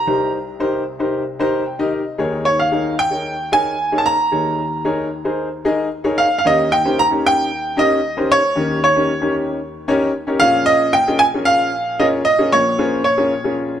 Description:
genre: soul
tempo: 113 BPM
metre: 4/4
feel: straight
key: unclear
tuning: A4 = 440 Hz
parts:
  - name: clear grand piano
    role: melody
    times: 0.0-13.5 s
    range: Db5 to Bb5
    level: -16 LUFS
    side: right 2 dB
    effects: none
  - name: warm upright piano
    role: accompaniment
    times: 0.0-13.8 s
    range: Bb1 to Bb5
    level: -19 LUFS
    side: left 2 dB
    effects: none
room: light reverb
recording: none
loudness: -15 LUFS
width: side -10 dB against mid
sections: 0.0-6.4 A section; 6.4-13.8 B section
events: upright piano fill 1.1-2.2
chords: 0.0 Cm7; 2.2 Eb7sus4; 6.4 Eb7; 10.4 Bbm7

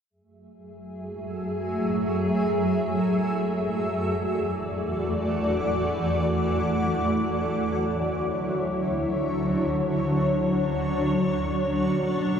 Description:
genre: hip hop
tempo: free time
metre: none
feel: none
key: F# minor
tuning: A4 = 440 Hz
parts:
  - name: granular cloud pad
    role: solo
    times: 0.9-12.4 s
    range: D2 to E5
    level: -23 LUFS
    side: equal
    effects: built-in reverb
room: moderate huge ambient reverb, RT60 7.8 s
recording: none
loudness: -23 LUFS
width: side -7 dB against mid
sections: 0.1-12.4 A section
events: none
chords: 0.1 F#m7; 3.8 E9sus4; 7.4 Dmaj7; 11.1 Bm7

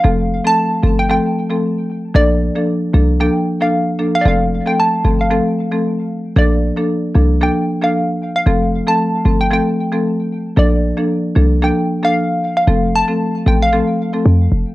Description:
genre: afrobeats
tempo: 114 BPM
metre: 4/4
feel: swing 55% on 16ths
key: F major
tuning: A4 = 441 Hz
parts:
  - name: hollow square pluck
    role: melody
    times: 0.0-14.1 s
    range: D5 to A5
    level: -18 LUFS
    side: equal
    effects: chorus, cassette tape, analog delay
  - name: marimba with medium hard mallets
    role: accompaniment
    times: 0.0-14.3 s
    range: F3 to A4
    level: -17 LUFS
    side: equal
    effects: cassette tape
  - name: short 808-style bass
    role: bass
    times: 0.0-14.6 s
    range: F1 to F2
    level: -14 LUFS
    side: equal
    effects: none
room: light reverb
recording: home recording on cassette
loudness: -13 LUFS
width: side -17 dB against mid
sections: 0.0-14.7 A section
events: none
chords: 0.0 F; 2.1 Bbmaj7; 4.3 F; 6.4 Bbmaj7; 8.5 F; 10.6 Bbmaj7; 12.7 F

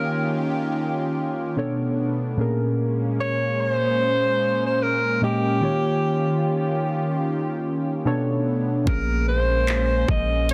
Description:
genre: contemporary R&B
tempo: 74 BPM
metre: 4/4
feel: swing 58% on 16ths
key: Bb dorian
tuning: A4 = 440 Hz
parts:
  - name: breathy alto saxophone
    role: melody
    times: 0.0-10.5 s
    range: G4 to Eb5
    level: -27 LUFS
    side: equal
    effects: tape echo
  - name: muted felt-like synth keys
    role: accompaniment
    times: 0.0-10.5 s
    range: Bb2 to Eb5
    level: -27 LUFS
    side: equal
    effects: chorus
  - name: lush unison pad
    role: sustained chords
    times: 0.0-10.5 s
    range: Eb3 to G4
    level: -30 LUFS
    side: equal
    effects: chorus, phaser, sidechain pumping
  - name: warm 808-style bass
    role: bass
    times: 8.9-10.5 s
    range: Bb1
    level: -25 LUFS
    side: equal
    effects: none
  - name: trap drum kit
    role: drums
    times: 8.9-10.5 s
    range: handclaps, hi-hat, kick drum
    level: -28 LUFS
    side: equal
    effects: none
room: light reverb, digital ambience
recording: dense, heavily limited modern master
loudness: -23 LUFS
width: mono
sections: 0.0-10.5 A section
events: none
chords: 0.0 Eb9; 1.6 Bm9; 2.4 Bbm9; 5.6 Eb9; 8.1 Bm9; 8.9 Bbm9

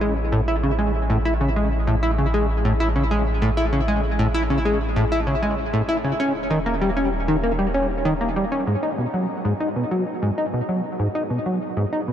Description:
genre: ambient, sequencer-driven space music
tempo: 97 BPM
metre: 4/4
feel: straight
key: G# minor from 8.7 s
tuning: A4 = 440 Hz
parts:
  - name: plucky analog bass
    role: riff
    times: 0.0-12.1 s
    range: G#2 to E4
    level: -20 LUFS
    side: equal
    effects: wide subtle chorus, tape echo, shimmer reverb
  - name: warm sub bass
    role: bass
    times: 0.0-8.6 s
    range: D#1 to A1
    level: -25 LUFS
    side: equal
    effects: none
room: wet huge ambient reverb, RT60 9.1 s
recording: dark, warm production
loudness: -19 LUFS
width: side -10 dB against mid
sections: 0.0-8.7 A section; 8.7-12.1 B section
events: none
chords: 0.0 A5; 6.2 D#7; 8.7 G#m7

